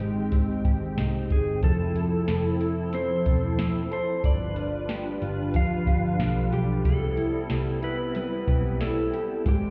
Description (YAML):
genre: dream pop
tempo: 92 BPM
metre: 4/4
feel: straight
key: unclear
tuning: A4 = 440 Hz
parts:
  - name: clean lap steel guitar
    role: melody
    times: 0.0-9.7 s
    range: G4 to F5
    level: -34 LUFS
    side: equal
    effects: digital delay
  - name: hollow soft pad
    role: sustained chords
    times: 0.0-9.7 s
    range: F3 to G5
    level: -35 LUFS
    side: equal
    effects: ensemble chorus
  - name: mellow electric guitar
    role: arpeggios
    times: 0.0-9.7 s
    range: G2 to A4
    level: -32 LUFS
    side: equal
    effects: analog chorus, digital delay
  - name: vintage muted picked electric bass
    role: bass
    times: 0.0-9.7 s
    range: E1 to C2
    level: -31 LUFS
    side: equal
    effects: none
  - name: soft vintage rhythm box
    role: drums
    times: 0.0-9.6 s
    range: hi-hat, kick drum, snare drum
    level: -28 LUFS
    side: equal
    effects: none
  - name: vibraphone with hard mallets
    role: texture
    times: 6.2-9.7 s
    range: A4 to A5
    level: -46 LUFS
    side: equal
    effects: digital delay
room: light reverb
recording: heard muffled through a wall, stone room reverb, EQ, faint mains hum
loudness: -26 LUFS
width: mono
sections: 0.0-9.7 A section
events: none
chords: 0.0 Abmaj7; 1.6 Fmaj7; 4.2 G7; 6.8 Cmaj7